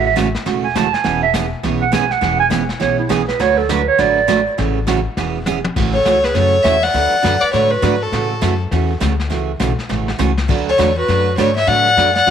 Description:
country, western swing; 203 BPM; 4/4; swing 62% on 8ths; A major; A4 = 437 Hz
breathy clarinet; second line; 0.0-8.6, 10.7-12.3 s; E4 to A5; -19 LUFS; right 7 dB
picked steel-string acoustic guitar; accompaniment; 0.0-12.3 s; C#3 to B4; -20 LUFS; right 9 dB
upright bass; bass; 0.0-12.3 s; E1 to A2; -21 LUFS; left 3 dB
vintage brush drum kit; drums; 0.2-12.3 s; brushed snare drum, crash cymbal, hi-hat, kick drum, snare drum, toms; -24 LUFS; left 2 dB
clear fiddle; melody; 5.9-8.6, 10.7-12.3 s; A4 to F#5; -14 LUFS; left 3 dB; slapback echo
moderate spring reverb, RT60 2.0 s; 1960s-style stereo; -14 LUFS; side -8 dB against mid
0.0-5.8 A section; 5.8-12.3 B section
clarinet solo 0.0-5.8; drum fill 5.5, 9.9-10.5
0.0 A6; 1.0 E6; 3.4 D6; 4.6 A6; 5.2 E6; 5.8 A6; 6.9 D6; 8.1 A6; 10.5 D6

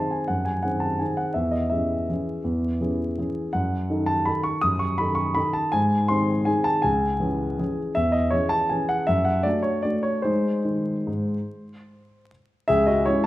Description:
classical, piano waltz; 141-175 BPM; 3/4; rubato; C# minor; A4 = 441 Hz
warm grand piano; solo; 0.0-13.3 s; C#2 to D#6; -21 LUFS; equal
wet recital hall reverb, RT60 1.4 s; minimal, uncompressed stereo recording, vinyl crackle; -21 LUFS; side -16 dB against mid
0.0-12.7 A section
0.0 G#7/F#; 1.4 C#m/E; 3.5 D#dim/F#; 5.7 G#; 6.8 C#m; 8.0 C#m/E; 9.1 D/F#; 10.2 G#; 12.7 C#m

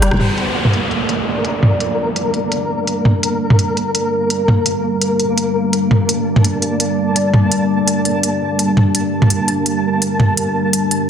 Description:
half-time drum and bass; 168 BPM; 4/4; half-time; G minor; A4 = 438 Hz
industrial drum kit; drums; 0.0-11.0 s; crash cymbal, hi-hat, rim click, toms; -15 LUFS; equal; low-pass filter on hats, low-pass filter on perc, low-pass filter on snare, low-pass filter on toms, low-pass filter on cymbals, low-pass filter on room
deep dark ambient pad; sustained chords; 1.1-11.1 s; G3 to D5; -18 LUFS; left 1 dB; chorus, built-in reverb
downlifter; sound effects; 0.2-3.1 s; -21 LUFS; right 2 dB
flickering grainy texture; texture; 0.8-11.1 s; Bb3 to A5; -21 LUFS; equal; built-in reverb
moderate lush hall reverb, RT60 1.6 s; dense, heavily limited modern master; -14 LUFS; side -8 dB against mid
0.2-11.1 A section
drum fill 0.0; band accent 0.1; filter sweep on drum 0.2-11.1
0.2 G5

